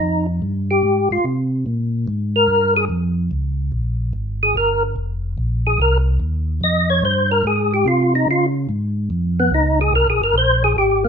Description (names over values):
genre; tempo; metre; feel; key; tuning
jazz; 145 BPM; 4/4; swing 66% on 8ths; F minor; A4 = 439 Hz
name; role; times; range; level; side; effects
percussive tonewheel organ; melody; 0.0-11.1 s; Bb3 to Eb5; -16 LUFS; equal; slow rotary speaker, chorus vibrato
mellow tonewheel organ; bass; 0.0-11.1 s; F1 to Db3; -20 LUFS; equal; chorus vibrato, slow rotary speaker
room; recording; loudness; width
moderate studio reverb, RT60 0.8 s; minimal, uncompressed stereo recording; -16 LUFS; side -7 dB against mid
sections
0.0-11.1 A section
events
tonewheel organ solo 0.0-11.1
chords
0.0 Fm7; 1.7 Bbm7; 5.0 Fm7; 8.3 Db; 9.9 C5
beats
| 0.01 0.42 0.84 1.25 | 1.67 2.08 2.49 2.90 | 3.32 3.73 4.14 4.56 | 4.97 5.38 5.80 6.21 | 6.62 7.04 7.45 7.86 | 8.28 8.69 9.10 9.52 | 9.93 10.34 10.76